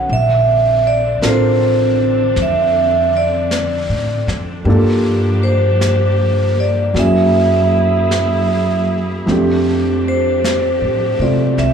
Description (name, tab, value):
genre	jazz ballad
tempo	52 BPM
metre	4/4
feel	swing 66% on 8ths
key	unclear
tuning	A4 = 441 Hz
part	vibraphone with medium mallets	melody	0.0-11.7 s	C5 to F#5	-16 LUFS	right 2 dB	slapback echo
part	warm grand piano	accompaniment	0.0-11.7 s	F3 to Bb4	-18 LUFS	right 1 dB	slapback echo
part	warm studio string section	sustained chords	0.0-11.7 s	D3 to G#4	-24 LUFS	left 1 dB	none
part	upright bass	bass	0.0-11.7 s	A1 to C3	-18 LUFS	equal	none
part	jazz brush drum kit	drums	0.1-11.7 s	brushed snare drum, hi-hat, snare drum	-27 LUFS	equal	slapback echo
room	light reverb, small room ambience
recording	live gig heard through the venue's PA, club reverb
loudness	-12 LUFS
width	side -7 dB against mid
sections	0.0-11.7 A section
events	none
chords	0.1 Bbmaj9; 4.7 Gm7; 7.0 F#9; 9.3 F69